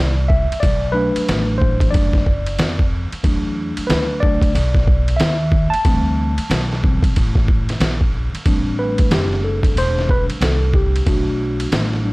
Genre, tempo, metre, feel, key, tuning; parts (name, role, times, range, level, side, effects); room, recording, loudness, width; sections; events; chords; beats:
hip hop, jazz-hop; 92 BPM; 4/4; swing 63% on 16ths; A dorian; A4 = 440 Hz
tine electric piano; accompaniment; 0.0-12.1 s; E3 to A5; -21 LUFS; equal; medium stereo tremolo
upright bass; bass; 0.0-12.1 s; E1 to F2; -20 LUFS; equal
trip hop sampler-style drum kit; drums; 0.3-12.0 s; hi-hat, kick drum, ride cymbal, snare drum; -18 LUFS; equal
little or no reverb; dry, gritty hardware recording, vinyl crackle; -15 LUFS; side -23 dB against mid
0.0-8.5 A section; 8.5-12.1 B section
tine electric piano solo 0.0-8.5, 8.5-12.1
0.0 Amadd11 (rootless); 0.6 Bm7; 3.2 E7sus4; 5.8 D7sus4; 8.5 Am7; 11.1 Bm7
| 0.63 1.28 1.94 2.59 | 3.24 3.89 4.54 5.20 | 5.85 6.50 7.15 7.80 | 8.46 9.11 9.76 10.41 | 11.06 11.72